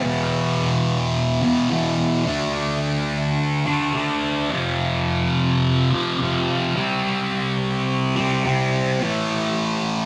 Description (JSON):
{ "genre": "rock", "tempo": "107 BPM", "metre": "4/4", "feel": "straight", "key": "unclear", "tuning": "A4 = 438 Hz", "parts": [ { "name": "thick fuzz guitar", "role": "solo", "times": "0.0-10.1 s", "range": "E2 to D4", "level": "-21 LUFS", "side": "equal", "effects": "distortion, phaser" } ], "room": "moderate studio reverb, RT60 0.5 s", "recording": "rough rehearsal-room recording, tube saturation", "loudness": "-21 LUFS", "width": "mono", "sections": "0.0-10.1 A section", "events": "none", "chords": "0.0 E5; 2.3 D5; 4.5 F5; 6.8 C5; 9.0 A5" }